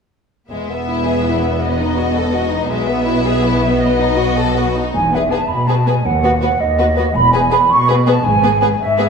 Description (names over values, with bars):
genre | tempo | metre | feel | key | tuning
quick classical-period movement for symphony orchestra | 109 BPM (dotted quarters) | 6/8 | straight | E major | A4 = 440 Hz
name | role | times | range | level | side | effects
rich studio violin section | melody | 0.5-9.0 s | B4 to E5 | -24 LUFS | left 5 dB | none
rich studio violin section | second line | 0.5-9.0 s | G#3 to A4 | -21 LUFS | left 4 dB | none
rich studio viola section | accompaniment | 0.5-9.0 s | B3 | -21 LUFS | equal | none
rich studio double bass section | bass | 0.5-8.6 s | E1 to D#2 | -22 LUFS | right 2 dB | none
warm studio cello section | bass | 0.5-9.1 s | D#2 to B2 | -20 LUFS | right 1 dB | none
flute section | second line | 4.9-9.1 s | D#5 to C#6 | -14 LUFS | right 2 dB | none
room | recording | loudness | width
wet scoring stage reverb, RT60 1.8 s | minimal, uncompressed stereo recording | -13 LUFS | side -5 dB against mid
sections
0.5-4.9 A section; 4.9-9.1 B section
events
none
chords
0.5 E; 2.7 E/B; 4.9 E; 6.1 B/D#; 7.2 E; 8.2 E/G#